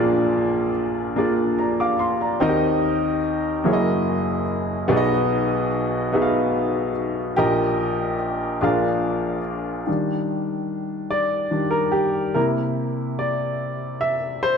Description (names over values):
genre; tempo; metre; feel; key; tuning
gospel; 48 BPM (dotted quarters); 6/8; straight; unclear; A4 = 440 Hz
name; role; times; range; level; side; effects
warm upright piano; solo; 0.0-14.6 s; Gb1 to D6; -20 LUFS; equal; none
room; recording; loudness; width
moderate concert hall reverb, RT60 2.1 s; dark, warm production; -20 LUFS; side -6 dB against mid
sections
0.0-9.9 A section; 9.9-14.6 B section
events
upright piano solo 9.9-14.6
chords
0.0 Bb7; 2.4 Eb6; 3.7 Gb13; 4.9 B6; 7.4 Eb/Bb; 8.6 Bb7; 9.9 Ebmaj7; 12.4 C7